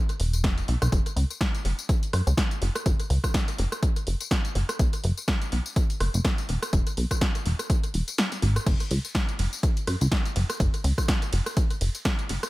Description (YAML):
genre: piano house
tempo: 124 BPM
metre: 4/4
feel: swing 57% on 16ths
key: unclear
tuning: A4 = 440 Hz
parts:
  - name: punchy analog drum machine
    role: drums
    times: 0.1-12.5 s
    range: crash cymbal, hi-hat, ride cymbal, rim click, snare drum, tambourine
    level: -30 LUFS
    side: equal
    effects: overdrive, analog delay
  - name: plucky analog bass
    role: bass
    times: 0.2-12.4 s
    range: E1 to F#2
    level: -24 LUFS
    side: equal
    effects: sidechain pumping
  - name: electronic kick drum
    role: drums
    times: 0.4-12.2 s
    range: none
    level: -24 LUFS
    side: equal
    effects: overdrive
room: little or no reverb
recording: echo-heavy mix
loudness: -23 LUFS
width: side -19 dB against mid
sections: 0.0-12.5 A section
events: kick drops out 8.2-8.7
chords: none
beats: 0.44 | 0.92 1.41 1.89 2.37 | 2.86 3.34 3.83 4.31 | 4.79 5.28 5.76 6.25 | 6.73 7.21 7.70 8.18 | 8.66 9.15 9.63 10.12 | 10.60 11.08 11.57 12.05